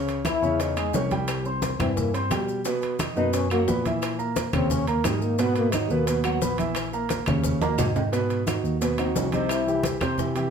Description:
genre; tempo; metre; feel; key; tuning
Afro-Cuban jazz; 175 BPM; 4/4; straight; G# minor; A4 = 440 Hz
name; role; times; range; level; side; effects
warm grand piano; accompaniment; 0.0-10.5 s; B2 to C#6; -26 LUFS; right 3 dB; none
tine electric piano; bass; 0.0-10.5 s; A#1 to C3; -28 LUFS; equal; overdrive
bongos; percussion; 0.1-10.5 s; none; -36 LUFS; left 5 dB; none
congas; percussion; 0.1-10.5 s; none; -30 LUFS; equal; none
maracas; percussion; 0.1-10.5 s; none; -40 LUFS; left 4 dB; none
timbales; percussion; 0.1-10.5 s; none; -34 LUFS; right 3 dB; none
breathy trombone; second line; 0.3-6.8, 9.0-9.8 s; E3 to E4; -27 LUFS; left 4 dB; none
claves; percussion; 0.3-10.2 s; none; -39 LUFS; left 2 dB; none
room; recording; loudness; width
wet studio reverb, RT60 0.7 s; band playing live in one room; -22 LUFS; side -7 dB against mid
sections
0.0-8.1 A section; 8.1-10.5 A section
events
trombone solo 0.0-10.5; drum fill 7.6-8.1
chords
0.0 C#madd9; 1.3 C; 2.7 Bmaj7; 4.0 A#dim; 4.7 D#5; 5.4 G#m9; 6.8 A#dim; 7.4 D#5; 8.1 G#m7; 9.5 C

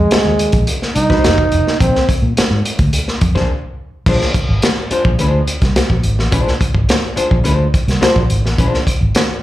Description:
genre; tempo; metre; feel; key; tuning
funk; 106 BPM; 4/4; straight; unclear; A4 = 440 Hz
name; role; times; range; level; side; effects
warm trombone; melody; 0.0-2.1 s; Ab3 to Eb4; -15 LUFS; right 2 dB; slapback echo
vintage muted fingered electric bass; bass; 0.0-9.1 s; F1 to Bb2; -16 LUFS; equal; none
crunchy breakbeat drum kit; drums; 0.1-9.3 s; crash cymbal, hi-hat, kick drum, snare drum; -15 LUFS; equal; slapback echo
archtop guitar, miked and amplified; accompaniment; 1.1-8.8 s; Ab3 to C5; -19 LUFS; left 3 dB; slapback echo
room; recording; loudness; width
light reverb; live gig heard through the venue's PA, club reverb; -12 LUFS; side -14 dB against mid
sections
0.0-4.1 A section; 4.1-9.4 B section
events
trombone solo 0.0-4.1; break 3.5-4.1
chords
0.0 Fm9; 1.8 Bb9

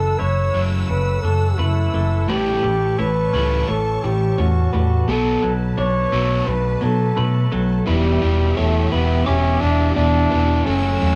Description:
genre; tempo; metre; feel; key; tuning
rock; 86 BPM; 4/4; straight; E dorian; A4 = 437 Hz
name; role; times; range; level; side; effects
warm trombone; melody; 0.0-11.2 s; G3 to C#5; -24 LUFS; equal; none
rich symphonic string section; sustained chords; 0.0-11.2 s; G4 to E6; -34 LUFS; equal; none
electric guitar through a small old amp; arpeggios; 0.0-11.2 s; A4 to D6; -34 LUFS; equal; tremolo
twangy electric guitar; arpeggios; 0.0-7.9 s; F#2 to E4; -32 LUFS; equal; none
crunchy overdriven guitar; riff; 0.0-11.2 s; E2 to B3; -27 LUFS; equal; none
picked electric bass; bass; 0.0-11.2 s; E1 to B2; -23 LUFS; equal; none
crunchy overdriven guitar; riff; 2.3-11.2 s; A2 to G4; -26 LUFS; equal; none
room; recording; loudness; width
moderate studio reverb, RT60 0.6 s; band playing live in one room; -19 LUFS; mono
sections
0.0-7.9 A section; 7.9-11.2 B section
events
build-up 0.0-7.9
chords
0.0 F#m7; 2.3 A7; 5.1 Bm7; 7.9 Em7

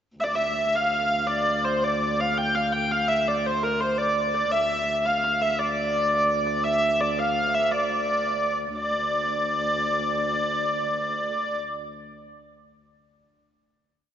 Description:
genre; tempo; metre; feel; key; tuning
medieval dance; 112 BPM (dotted quarters); 6/8; straight; D minor; A4 = 440 Hz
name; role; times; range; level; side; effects
rich hurdy-gurdy; melody; 0.2-11.6 s; Bb4 to G5; -23 LUFS; equal; none
rich viola da gamba; drone; 0.2-11.6 s; D2; -32 LUFS; equal; none
room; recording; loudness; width
wet church reverb, RT60 2.5 s; nothing above 7.7 kHz; -22 LUFS; side -9 dB against mid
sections
0.2-8.8 A section; 8.8-10.8 final note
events
speeding up 0.2-10.8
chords
none

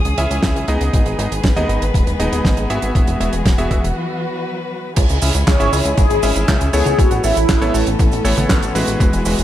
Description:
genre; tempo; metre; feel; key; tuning
italo disco; 119 BPM; 4/4; straight; C# minor; A4 = 441 Hz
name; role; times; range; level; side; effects
dark chamber string section; sustained chords; 0.0-9.4 s; C#3 to D#6; -23 LUFS; left 2 dB; none
chorused synth bass; bass; 0.1-9.4 s; D#1 to D#2; -19 LUFS; equal; none
damped 70s drum kit; drums; 0.1-9.4 s; cabasa, crash cymbal, handclaps, hi-hat, snare drum, toms; -22 LUFS; right 2 dB; studio reverb
bright electric grand piano; stabs; 0.2-9.4 s; G#3 to E5; -22 LUFS; right 1 dB; tape echo
electronic kick drum; drums; 0.4-9.1 s; none; -16 LUFS; equal; studio reverb
mellow synth brass; melody; 5.5-8.2 s; E4 to C#5; -19 LUFS; equal; chorus, vintage 12-bit sampler grit, tape echo
room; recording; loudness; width
light reverb; none; -14 LUFS; side -12 dB against mid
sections
0.0-5.0 A section; 5.0-9.4 B section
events
break 4.0-5.0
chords
0.0 C#m; 0.9 G#m; 3.0 Eadd9; 4.0 Bsus4; 5.0 C#m; 7.0 Aadd9

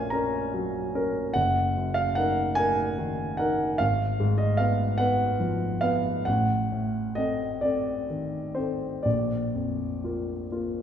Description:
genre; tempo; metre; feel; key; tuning
classical, romantic nocturne for solo piano; 41-51 BPM (dotted quarters); 6/8; rubato; unclear; A4 = 440 Hz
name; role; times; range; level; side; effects
warm concert grand piano; solo; 0.0-10.8 s; Gb1 to Bb5; -24 LUFS; equal; none
room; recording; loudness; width
wet recital hall reverb, RT60 1.5 s; heard from further back in the room; -24 LUFS; side -9 dB against mid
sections
0.0-10.8 A section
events
none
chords
0.0 Gb/Bb; 1.4 Ebm/Gb; 3.8 Fdim/Ab; 6.3 Adim7; 9.0 Bb

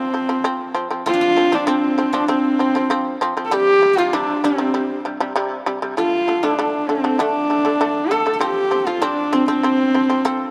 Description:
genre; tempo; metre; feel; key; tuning
mongolian traditional, Mongolian folk; 98 BPM; 4/4; straight; F gong mode; A4 = 440 Hz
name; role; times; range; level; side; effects
rich horsehead fiddle; melody; 0.0-10.5 s; C4 to A4; -21 LUFS; equal; none
guzheng; second line; 0.0-10.5 s; C4 to A4; -26 LUFS; equal; none
shamisen; arpeggios; 0.0-10.5 s; C3 to C4; -24 LUFS; equal; none
room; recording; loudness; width
moderate huge ambient reverb, RT60 3.7 s; dark, warm production; -19 LUFS; mono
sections
0.0-10.5 A section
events
none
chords
0.0 F5; 3.5 C5; 6.0 D5; 8.4 F5

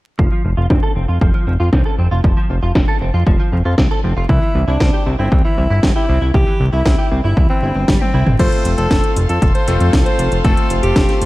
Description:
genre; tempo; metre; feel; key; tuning
italo disco; 117 BPM; 4/4; straight; F major; A4 = 440 Hz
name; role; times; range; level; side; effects
direct-recorded clean electric guitar; arpeggios; 0.2-8.3 s; E3 to A4; -24 LUFS; right 2 dB; ensemble chorus, low-pass filter, ping-pong delay
fat analog bass; bass; 0.2-11.3 s; F1 to F2; -16 LUFS; equal; tube saturation
electronic kick drum; drums; 0.2-11.1 s; none; -16 LUFS; equal; overdrive
house drum kit; drums; 0.7-11.3 s; crash cymbal, hi-hat, snare drum, toms; -21 LUFS; equal; overdrive, low-pass filter on snare, low-pass filter on toms, low-pass filter on hats, low-pass filter on cymbals, low-pass filter on room
clear alto saxophone; melody; 4.3-11.3 s; C4 to C5; -20 LUFS; equal; tape echo
warm studio string section; sustained chords; 8.4-11.3 s; A4 to C6; -25 LUFS; equal; none
clear electric grand piano; stabs; 8.4-11.3 s; A3 to A4; -22 LUFS; left 5 dB; none
room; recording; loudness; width
digital ambience; dark, warm production, vinyl crackle; -12 LUFS; side -18 dB against mid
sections
0.2-8.4 A section; 8.4-11.3 B section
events
filter sweep on drum 0.2-8.4; drum fill 7.9-8.4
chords
0.2 F5; 4.3 C; 8.4 F

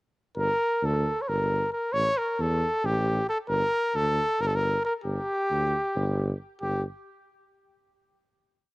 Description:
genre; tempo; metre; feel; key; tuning
balkan folk; 269 BPM (eighths); 7/8; straight; G dorian sharp4; A4 = 440 Hz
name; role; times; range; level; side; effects
warm trumpet; melody; 0.4-6.8 s; G4 to C#5; -26 LUFS; equal; cassette tape
mellow tuba; bass; 0.4-6.8 s; G1 to E2; -29 LUFS; equal; none
room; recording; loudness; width
small room ambience; home recording on cassette; -24 LUFS; side -22 dB against mid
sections
0.4-6.6 A section; 6.6-8.2 final note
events
none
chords
0.4 Gm; 1.9 A5; 3.5 G5; 6.6 N.C.

